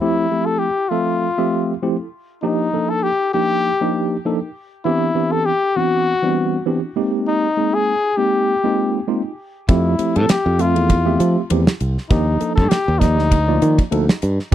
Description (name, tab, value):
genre	electric jazz fusion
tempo	99 BPM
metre	4/4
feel	swing 55% on 16ths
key	unclear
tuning	A4 = 440 Hz
part	mellow trumpet	melody	0.0-14.5 s	Eb4 to A4	-20 LUFS	left 4 dB	none
part	tine electric piano	accompaniment	0.0-14.5 s	E3 to E5	-20 LUFS	right 2 dB	overdrive, fast stereo tremolo
part	modern bright fingered electric bass	bass	9.7-14.5 s	C2 to F3	-17 LUFS	equal	none
part	damped 70s drum kit	drums	9.7-14.5 s	hi-hat, kick drum, ride cymbal, snare drum	-16 LUFS	right 1 dB	none
room	little or no reverb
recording	dry, close 1970s-style studio recording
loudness	-16 LUFS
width	side -11 dB against mid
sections	0.0-14.5 A section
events	none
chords	0.0 Fmaj9; 2.4 Ebmaj9; 4.9 Cmaj9; 7.0 Abmaj9; 9.7 Fmaj9; 12.1 Ebmaj9